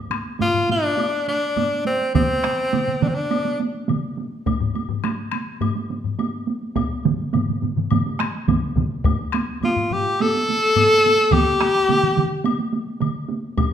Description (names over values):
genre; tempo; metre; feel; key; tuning
japanese traditional, taiko drum ensemble; 105 BPM; 4/4; straight; G suspended pentatonic; A4 = 439 Hz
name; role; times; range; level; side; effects
taiko ensemble; percussion; 0.1-13.7 s; none; -25 LUFS; right 4 dB; none
taiko ensemble; percussion; 0.1-10.9 s; none; -27 LUFS; left 5 dB; none
woodblock; percussion; 0.1-13.7 s; none; -35 LUFS; left 7 dB; none
edgy tenor saxophone; melody; 0.4-3.6, 9.6-12.5 s; C4 to A4; -18 LUFS; left 1 dB; none
taiko ensemble; percussion; 2.1-13.2 s; none; -24 LUFS; right 5 dB; none
taiko ensemble; percussion; 2.1-13.7 s; none; -24 LUFS; left 2 dB; none
room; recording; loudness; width
wet recital hall reverb, RT60 1.3 s; minimal, uncompressed stereo recording; -18 LUFS; side -9 dB against mid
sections
0.0-13.7 A section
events
speeding up 0.0-13.7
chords
none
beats
0.40 0.98 1.57 | 2.15 2.73 3.31 3.89 | 4.46 5.04 5.62 6.19 | 6.77 7.34 7.91 8.48 | 9.05 9.62 10.19 10.76 | 11.32 11.89 12.46 13.02 | 13.58